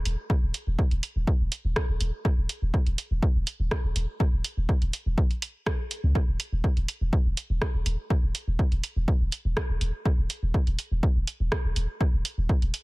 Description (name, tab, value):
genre	minimal techno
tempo	123 BPM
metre	4/4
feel	straight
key	unclear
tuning	A4 = 442 Hz
part	punchy sub bass	bass	0.0-12.7 s	Eb1 to Db2	-26 LUFS	equal	sidechain pumping
part	punchy analog drum machine	drums	0.1-12.8 s	hi-hat, rim click	-32 LUFS	right 2 dB	analog delay
part	electronic kick drum	drums	0.3-12.6 s	none	-24 LUFS	equal	none
room	little or no reverb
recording	echo-heavy mix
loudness	-24 LUFS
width	side -22 dB against mid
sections	0.0-12.8 A section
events	none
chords	none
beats	| 0.30 0.79 1.27 1.76 | 2.25 2.74 3.23 3.71 | 4.20 4.69 5.18 5.67 | 6.15 6.64 7.13 7.62 | 8.10 8.59 9.08 9.57 | 10.05 10.54 11.03 11.52 | 12.01 12.49